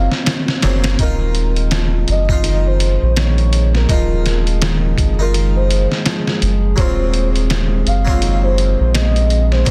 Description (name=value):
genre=trip hop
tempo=83 BPM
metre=4/4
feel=swing 59% on 16ths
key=Eb dorian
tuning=A4 = 440 Hz
part: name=pure breathy sine lead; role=melody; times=0.0-9.7 s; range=Bb4 to F5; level=-26 LUFS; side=equal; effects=subtle chorus, tape echo
part: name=harpsichord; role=accompaniment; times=0.0-9.7 s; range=Gb3 to Ab4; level=-29 LUFS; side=equal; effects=harmonic tremolo, tape echo
part: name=felt-muted upright piano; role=arpeggios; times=0.0-9.7 s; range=C3 to F3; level=-28 LUFS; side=equal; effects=tape echo
part: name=soft dub sub bass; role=bass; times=0.0-9.7 s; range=Eb1 to Bb1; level=-18 LUFS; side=equal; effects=none
part: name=trip hop sampler-style drum kit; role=drums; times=0.1-9.7 s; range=hi-hat, kick drum, snare drum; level=-21 LUFS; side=equal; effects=none
part: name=dark analog pad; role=sustained chords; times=1.0-9.7 s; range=Ab3 to Ab4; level=-29 LUFS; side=equal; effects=chorus
room=little or no reverb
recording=dense, heavily limited modern master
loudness=-16 LUFS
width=mono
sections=0.0-9.7 A section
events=none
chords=0.0 Ab13; 1.0 Ebmadd9; 6.8 Ab13/Eb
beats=0.27 | 0.99 1.72 2.44 3.16 | 3.89 4.61 5.33 6.05 | 6.78 7.50 8.22 8.95 | 9.67